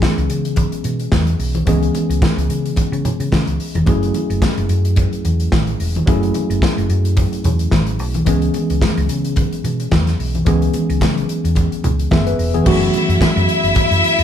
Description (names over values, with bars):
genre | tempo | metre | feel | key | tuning
disco | 109 BPM | 4/4 | swing 56% on 16ths | F# minor | A4 = 440 Hz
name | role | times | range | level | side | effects
tine electric piano | accompaniment | 0.0-14.2 s | E3 to E5 | -20 LUFS | equal | medium stereo tremolo
modern studio drum kit | drums | 0.0-14.2 s | crash cymbal, hi-hat, kick drum, snare drum | -19 LUFS | equal | none
congas | percussion | 0.0-13.9 s | none | -22 LUFS | left 1 dB | none
hollow-body short-scale fingered electric bass | bass | 0.2-14.2 s | E1 to C#3 | -19 LUFS | equal | none
clear studio string section | second line | 12.7-14.2 s | E4 to E5 | -16 LUFS | left 2 dB | none
room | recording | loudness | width
moderate studio reverb, RT60 0.7 s | band playing live in one room | -14 LUFS | side -9 dB against mid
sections
0.0-12.7 A section; 12.7-14.2 B section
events
tine electric piano fill 11.8-12.7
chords
0.0 C#m7; 3.9 F#m9; 8.3 C#m7; 12.7 F#m7